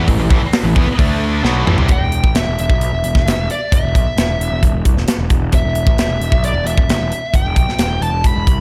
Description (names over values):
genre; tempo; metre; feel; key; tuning
hard rock; 132 BPM; 4/4; straight; unclear; A4 = 440 Hz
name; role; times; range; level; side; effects
overdriven tonewheel organ; sustained chords; 0.0-1.9 s; A3 to E5; -35 LUFS; equal; none
distorted electric guitar; riff; 0.0-1.9 s; A2 to D4; -25 LUFS; equal; overdrive
heavy high-gain guitar; riff; 0.0-1.9 s; A2 to D4; -23 LUFS; equal; distortion
fuzz picked electric bass; bass; 0.0-8.6 s; E1 to E2; -21 LUFS; equal; overdrive
tight metal drum kit; drums; 0.1-8.6 s; hi-hat, kick drum, snare drum, toms; -18 LUFS; equal; none
high-gain lead guitar; melody; 1.9-8.6 s; D5 to B5; -23 LUFS; equal; distortion, slapback echo
room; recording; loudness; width
light reverb, small room ambience; none; -15 LUFS; mono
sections
0.0-1.9 A section; 1.9-8.6 B section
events
drum fill 1.4-1.9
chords
0.0 A5; 1.0 D5; 1.4 A5; 1.9 N.C.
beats
| 0.08 0.53 0.99 1.44 | 1.89 2.35 2.80 3.26 | 3.71 4.16 4.62 5.07 | 5.53 5.98 6.43 6.88 | 7.34 7.79 8.24